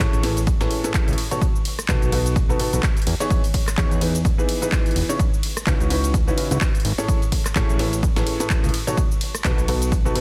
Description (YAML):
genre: piano house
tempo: 127 BPM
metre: 4/4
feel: swing 57% on 16ths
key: unclear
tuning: A4 = 441 Hz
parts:
  - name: clear upright piano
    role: riff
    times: 0.0-10.2 s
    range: A2 to C#5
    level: -27 LUFS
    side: equal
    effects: sidechain pumping, dub echo
  - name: fat analog bass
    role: bass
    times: 0.0-10.1 s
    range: E1 to E2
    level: -26 LUFS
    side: equal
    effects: sidechain pumping
  - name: breakbeat sampler-style drum kit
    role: drums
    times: 0.0-10.2 s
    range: hi-hat, snare drum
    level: -39 LUFS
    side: equal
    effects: none
  - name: electronic kick drum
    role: drums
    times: 0.0-10.0 s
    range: none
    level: -24 LUFS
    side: equal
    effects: studio reverb
  - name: house drum kit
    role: drums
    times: 0.0-10.2 s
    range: handclaps, hi-hat, ride cymbal, rim click, shaker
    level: -31 LUFS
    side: equal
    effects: studio reverb
room: digital ambience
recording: dense, heavily limited modern master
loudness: -21 LUFS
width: mono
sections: 0.0-10.2 A section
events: none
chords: 0.0 Amaj9; 1.2 B7; 3.1 Emaj7; 5.2 C#m11; 7.1 Amaj9; 8.7 B7